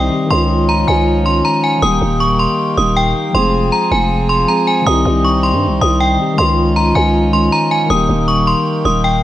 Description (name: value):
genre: hip hop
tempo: 158 BPM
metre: 4/4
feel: half-time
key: unclear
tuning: A4 = 440 Hz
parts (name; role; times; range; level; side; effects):
- metallic FM bell; melody; 0.0-9.2 s; G5 to Eb6; -15 LUFS; equal; chorus, tape echo
- mellow tine electric piano; accompaniment; 0.0-9.2 s; Eb3 to Ab4; -18 LUFS; left 3 dB; none
- pedal harmonium; sustained chords; 0.0-9.2 s; C3 to Ab4; -22 LUFS; right 3 dB; none
- growling 808-style bass; bass; 0.0-9.2 s; Eb1 to G2; -16 LUFS; equal; none
room: light reverb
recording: none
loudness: -11 LUFS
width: side -13 dB against mid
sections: 0.0-9.2 A section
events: none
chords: 0.3 Dbadd9; 1.8 Eb; 3.3 Fm; 4.9 Cm; 6.4 Dbadd9; 7.9 Eb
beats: | 0.31 0.69 1.07 1.45 | 1.83 2.21 2.59 2.97 | 3.35 3.73 4.11 4.49 | 4.87 5.24 5.62 6.00 | 6.38 6.76 7.14 7.52 | 7.90 8.28 8.66 9.04